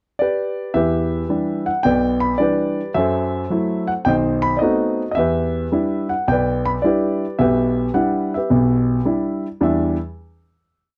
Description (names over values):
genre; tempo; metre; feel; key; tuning
solo jazz; 108 BPM; 4/4; swing 69% on 8ths; E minor; A4 = 440 Hz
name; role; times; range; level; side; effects
warm concert grand piano; solo; 0.2-10.0 s; B1 to B5; -19 LUFS; equal; none
room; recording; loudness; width
little or no reverb; close, detailed microphones; -19 LUFS; mono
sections
0.0-0.7 pickup bar; 0.7-9.6 A section; 9.6-11.0 final chord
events
none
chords
0.0 G; 0.7 Em7; 3.0 F#m7b5; 4.1 B7b9; 5.2 Em7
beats
0.19 | 0.74 1.29 1.85 2.40 | 2.96 3.51 4.06 4.62 | 5.17 5.73 6.28 6.84 | 7.39 7.95 8.51 9.06 | 9.62